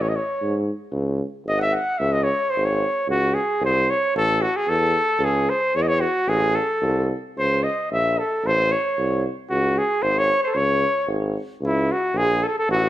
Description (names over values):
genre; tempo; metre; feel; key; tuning
balkan folk; 112 BPM; 2/4; swing 55% on 16ths; C# harmonic minor; A4 = 439 Hz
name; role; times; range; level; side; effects
mellow trumpet; melody; 0.0-12.9 s; E4 to F#5; -20 LUFS; equal; none
clear tuba; bass; 0.0-12.9 s; G#1 to G#2; -24 LUFS; equal; none
room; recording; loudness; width
moderate recital hall reverb, RT60 1.4 s; none; -19 LUFS; side -13 dB against mid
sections
0.0-3.1 A section; 3.1-11.6 B section; 11.6-12.9 B section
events
trumpet solo 0.0-3.1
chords
0.0 Amaj7; 0.9 C#5; 3.1 G#add11; 4.1 A5; 5.2 C#m; 6.3 Ammaj7; 7.4 A#dim; 8.4 A; 9.5 C#5; 11.6 A#m7b5